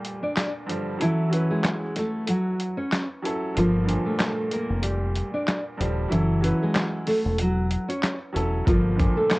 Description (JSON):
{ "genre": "hip hop, boom-bap hip-hop", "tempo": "94 BPM", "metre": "4/4", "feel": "swing 55% on 16ths", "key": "unclear", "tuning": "A4 = 441 Hz", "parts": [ { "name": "nylon-string guitar", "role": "melody", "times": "0.0-9.4 s", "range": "E3 to D5", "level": "-24 LUFS", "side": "equal", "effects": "high-pass filter, low-pass filter, analog delay" }, { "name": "bright upright piano", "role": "accompaniment", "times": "0.0-9.4 s", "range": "G2 to B4", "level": "-30 LUFS", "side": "right 1 dB", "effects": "cassette tape, high-pass filter, low-pass filter" }, { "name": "lo-fi sampler-style drum kit", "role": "drums", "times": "0.0-9.4 s", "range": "handclaps, hi-hat, kick drum, snare drum", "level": "-26 LUFS", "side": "equal", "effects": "cassette tape" }, { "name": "deep dub fingered electric bass", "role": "bass", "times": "3.6-9.1 s", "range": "Eb1 to G1", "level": "-25 LUFS", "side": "equal", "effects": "none" } ], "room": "light reverb", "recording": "home recording on cassette", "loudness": "-22 LUFS", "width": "side -22 dB against mid", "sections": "0.0-9.4 A section", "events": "break 0.0-8.7", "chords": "0.0 Gm7; 1.0 F#m7; 3.6 Gm7; 6.1 F#m7; 8.7 Gm7" }